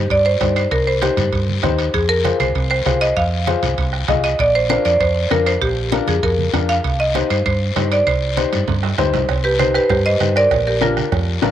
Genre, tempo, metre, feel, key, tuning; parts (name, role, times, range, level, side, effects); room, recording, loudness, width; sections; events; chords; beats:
latin, cumbia; 196 BPM; 4/4; straight; C minor; A4 = 439 Hz
marimba with hard mallets; melody; 0.0-11.2 s; F4 to F5; -18 LUFS; right 1 dB
hollow-body short-scale fingered electric bass; bass; 0.0-11.5 s; A1 to G2; -21 LUFS; equal
bombo; percussion; 0.1-11.5 s; -27 LUFS; right 4 dB
congas; percussion; 0.1-11.5 s; -28 LUFS; right 7 dB
guiro; percussion; 0.1-11.5 s; -29 LUFS; left 10 dB
timbales and cowbell; percussion; 0.1-11.5 s; -29 LUFS; right 12 dB
dark upright piano; accompaniment; 0.4-11.5 s; D4 to Eb5; -22 LUFS; left 7 dB
wet spring reverb, RT60 2.3 s; 1960s-style stereo with parts hard left and right; -15 LUFS; side -11 dB against mid
0.0-9.3 A section; 9.3-11.5 B section
drum fill 8.7-9.3
0.0 Cm; 1.9 Fm; 4.4 Bb; 6.8 Cm; 10.5 Bb
0.10 0.41 | 0.71 1.02 1.33 1.63 | 1.94 2.25 2.55 2.86 | 3.17 3.47 3.78 4.08 | 4.39 4.70 5.00 5.31 | 5.62 5.92 6.23 6.54 | 6.84 7.15 7.45 7.76 | 8.07 8.37 8.68 8.98 | 9.29 9.60 9.90 10.21 | 10.51 10.82 11.12 11.43